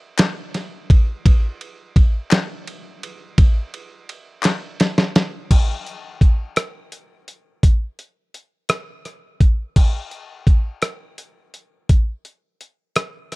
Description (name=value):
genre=gospel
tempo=56 BPM (dotted quarters)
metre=6/8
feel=straight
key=none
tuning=none
part: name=dusty soul sampler-style drum kit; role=drums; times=0.2-13.4 s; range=crash cymbal, hi-hat, kick drum, ride cymbal, rim click, snare drum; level=-15 LUFS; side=equal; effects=none
part: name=group handclap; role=percussion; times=0.2-4.8 s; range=none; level=-24 LUFS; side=left 8 dB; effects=none
room=little or no reverb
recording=dry, close 1970s-style studio recording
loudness=-16 LUFS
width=side -24 dB against mid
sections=0.0-5.5 A section; 5.5-9.8 B section; 9.8-13.4 C section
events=drum fill 4.4-5.5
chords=none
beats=0.19 | 1.25 2.31 | 3.38 4.44 | 5.50 6.57 | 7.63 8.70 | 9.76 10.83 | 11.90 12.97